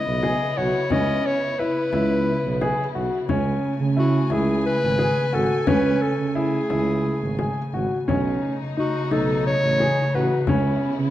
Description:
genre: contemporary instrumental, chamber music in an uneven meter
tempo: 176 BPM (eighths)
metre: 7/8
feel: straight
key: unclear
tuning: A4 = 440 Hz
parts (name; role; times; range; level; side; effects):
- bright clarinet; melody; 0.0-10.5 s; F#4 to D#5; -24 LUFS; left 1 dB; none
- dark chamber string section; sustained chords; 0.0-11.1 s; C#3 to G#5; -27 LUFS; left 1 dB; none
- mellow tuba; bass; 0.1-11.1 s; G#1 to C#3; -25 LUFS; right 3 dB; none
- dark baby grand piano; arpeggios; 0.2-10.9 s; C#4 to G#4; -25 LUFS; left 1 dB; none
- frame drum; percussion; 0.2-10.8 s; none; -29 LUFS; left 5 dB; none
room: moderate recital hall reverb, RT60 1.6 s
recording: dark, warm production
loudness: -19 LUFS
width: side -13 dB against mid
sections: 0.0-11.1 A section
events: none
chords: 0.0 C#m7; 3.3 Amaj7; 8.1 B9; 10.5 C#m7

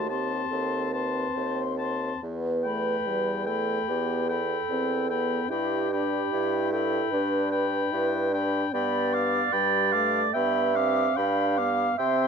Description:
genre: classical, slow romantic movement for wind quintet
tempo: 74 BPM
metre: 4/4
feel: rubato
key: unclear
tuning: A4 = 439 Hz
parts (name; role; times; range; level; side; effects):
- silver concert flute; melody; 0.0-12.3 s; B5 to D6; -32 LUFS; left 8 dB; none
- bright oboe; second line; 0.0-12.3 s; F5 to A5; -32 LUFS; left 7 dB; none
- clear French horn; accompaniment; 0.0-12.3 s; G3 to E4; -32 LUFS; left 2 dB; none
- dark clarinet; accompaniment; 0.0-12.3 s; F#4 to F5; -28 LUFS; right 8 dB; none
- clear bassoon; bass; 0.0-12.3 s; D#2 to C3; -30 LUFS; right 1 dB; none
room: light reverb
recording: close, detailed microphones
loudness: -24 LUFS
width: side -6 dB against mid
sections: 0.0-12.3 A section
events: none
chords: 0.0 D#dim7(no3); 2.2 Em; 5.5 G; 8.7 G7

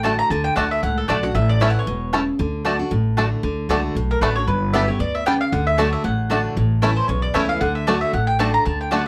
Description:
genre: bluegrass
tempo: 230 BPM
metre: 4/4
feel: swing 55% on 8ths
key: D major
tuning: A4 = 440 Hz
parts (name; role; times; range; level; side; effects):
- mandolin; melody; 0.0-9.1 s; A4 to Bb5; -25 LUFS; equal; none
- picked steel-string acoustic guitar; accompaniment; 0.0-9.1 s; E2 to G4; -26 LUFS; equal; none
- mandolin; stabs; 0.0-9.0 s; A3 to A5; -27 LUFS; equal; none
- upright bass; bass; 0.0-9.1 s; E1 to D2; -25 LUFS; equal; none
- bluegrass banjo; melody; 0.1-9.0 s; G3 to E4; -27 LUFS; equal; none
room: light reverb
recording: none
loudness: -20 LUFS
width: mono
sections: 0.0-3.4 A section; 3.4-9.1 A section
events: none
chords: 0.0 D; 1.4 A; 2.4 D; 4.5 G; 5.5 D; 6.6 A; 7.6 D

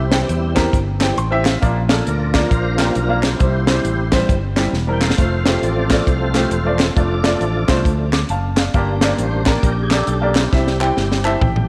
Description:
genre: uptempo gospel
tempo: 135 BPM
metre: 4/4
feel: swing 62% on 8ths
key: unclear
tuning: A4 = 440 Hz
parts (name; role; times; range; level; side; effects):
- clear baby grand piano; accompaniment; 0.0-11.7 s; G2 to D6; -24 LUFS; equal; none
- tonewheel organ; sustained chords; 0.0-11.7 s; E3 to G5; -26 LUFS; equal; slow rotary speaker, overdrive, chorus vibrato
- fingered electric bass; bass; 0.0-11.7 s; E1 to E2; -22 LUFS; equal; none
- tight funk drum kit; drums; 0.1-11.7 s; hi-hat, kick drum, snare drum, toms; -21 LUFS; equal; none
- group handclap; percussion; 0.1-11.3 s; none; -32 LUFS; equal; none
room: moderate echo chamber reverb, RT60 2.0 s, small room ambience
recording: none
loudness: -17 LUFS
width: mono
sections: 0.0-11.7 A section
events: tonewheel organ solo 0.0-11.7; grand piano fill 1.0-1.6, 11.0-11.7; drum fill 4.7-5.2, 10.5-11.7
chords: 0.0 C; 1.6 Bb; 3.4 C; 5.2 F; 7.0 Dm/F; 8.7 Gm; 10.5 C

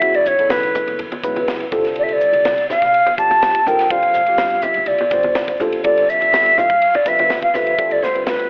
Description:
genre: electric jazz fusion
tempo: 124 BPM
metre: 4/4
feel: straight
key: unclear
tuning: A4 = 438 Hz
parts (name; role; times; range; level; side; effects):
- silver concert flute; melody; 0.0-8.5 s; B4 to A5; -17 LUFS; equal; none
- tine electric piano; accompaniment; 0.0-8.5 s; C#3 to C5; -25 LUFS; equal; phaser
- crisp fusion drum kit; drums; 0.0-8.5 s; hi-hat, kick drum, ride cymbal, snare drum; -29 LUFS; equal; none
- upright bass; bass; 0.3-8.5 s; G1 to C3; -39 LUFS; equal; none
- congas; percussion; 0.8-7.7 s; none; -31 LUFS; equal; none
room: moderate echo chamber reverb, RT60 1.4 s, studio ambience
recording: telephone sound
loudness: -16 LUFS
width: mono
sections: 0.0-8.5 A section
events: none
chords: 0.0 Esus4; 1.7 C13sus4; 5.8 G13sus4

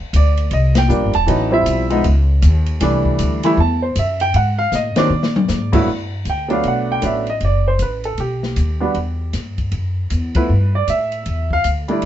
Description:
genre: jazz piano trio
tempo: 156 BPM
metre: 4/4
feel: swing 64% on 8ths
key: G major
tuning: A4 = 440 Hz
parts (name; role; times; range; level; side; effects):
- upright bass; bass; 0.0-12.1 s; Eb1 to Bb2; -18 LUFS; equal; none
- open jazz drum kit; drums; 0.1-12.1 s; crash cymbal, hi-hat, kick drum, ride cymbal, snare drum, toms; -24 LUFS; left 2 dB; none
- warm grand piano; melody; 0.2-12.1 s; G2 to B5; -18 LUFS; right 1 dB; none
room: light reverb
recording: band playing live in one room, nothing above 7.9 kHz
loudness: -15 LUFS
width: side -11 dB against mid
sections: 0.0-5.9 A section; 5.9-12.1 B section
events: band accent 0.7, 4.9, 10.3; drum fill 4.7-5.5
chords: 0.0 Ebmaj7; 1.3 Am13; 2.0 C#sus2; 2.8 C69; 4.3 Ab7(no3); 5.9 Gmaj9; 7.4 F#m; 8.2 B; 9.0 Emadd9; 10.5 Gsus2

